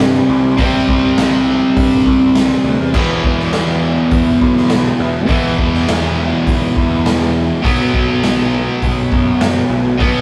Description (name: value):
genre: quiet-loud alternative rock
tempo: 102 BPM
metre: 4/4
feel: straight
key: E minor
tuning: A4 = 440 Hz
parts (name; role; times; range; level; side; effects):
- distorted electric guitar; riff; 0.0-10.2 s; E2 to C4; -16 LUFS; equal; overdrive
- fuzz picked electric bass; bass; 0.0-10.2 s; B1 to E3; -22 LUFS; equal; overdrive
- raw garage drum kit; drums; 0.0-10.1 s; crash cymbal, hi-hat, kick drum, snare drum; -20 LUFS; equal; none
room: light reverb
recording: rough rehearsal-room recording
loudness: -14 LUFS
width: mono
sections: 0.0-10.2 A section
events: none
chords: 0.0 C5; 2.9 E5; 7.6 B5